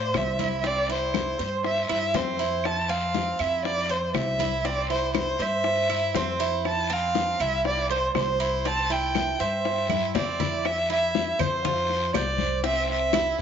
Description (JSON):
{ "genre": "latin, Cuban son and guajira", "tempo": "120 BPM", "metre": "4/4", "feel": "straight", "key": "F major", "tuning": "A4 = 441 Hz", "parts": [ { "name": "warm violin", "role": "melody", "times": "0.0-13.4 s", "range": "C5 to A5", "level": "-26 LUFS", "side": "equal", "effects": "none" }, { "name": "Cuban tres", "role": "arpeggios", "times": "0.0-13.4 s", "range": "C4 to C5", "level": "-29 LUFS", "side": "right 9 dB", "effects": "none" }, { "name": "upright bass", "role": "bass", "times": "0.0-13.4 s", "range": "C2 to A2", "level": "-32 LUFS", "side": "left 1 dB", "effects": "none" }, { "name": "bongos", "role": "percussion", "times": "0.1-13.4 s", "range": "none", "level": "-32 LUFS", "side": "left 13 dB", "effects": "none" }, { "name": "claves", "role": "percussion", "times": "0.1-13.4 s", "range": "none", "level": "-36 LUFS", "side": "right 14 dB", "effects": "none" }, { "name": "congas", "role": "percussion", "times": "0.1-13.4 s", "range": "none", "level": "-33 LUFS", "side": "left 10 dB", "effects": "none" }, { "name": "guiro", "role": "percussion", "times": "0.1-13.4 s", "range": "none", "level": "-39 LUFS", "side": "left 14 dB", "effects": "none" } ], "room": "wet spring reverb, RT60 2.6 s", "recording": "1960s-style stereo with parts hard left and right, nothing above 7.6 kHz", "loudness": "-23 LUFS", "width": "side -8 dB against mid", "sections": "0.0-10.6 A section; 10.6-13.4 B section", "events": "drum fill 9.9-10.6", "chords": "0.0 Fmaj7 (rootless); 0.6 C; 2.6 F5; 4.7 C; 6.7 F5; 8.7 C; 10.6 F5; 12.6 C" }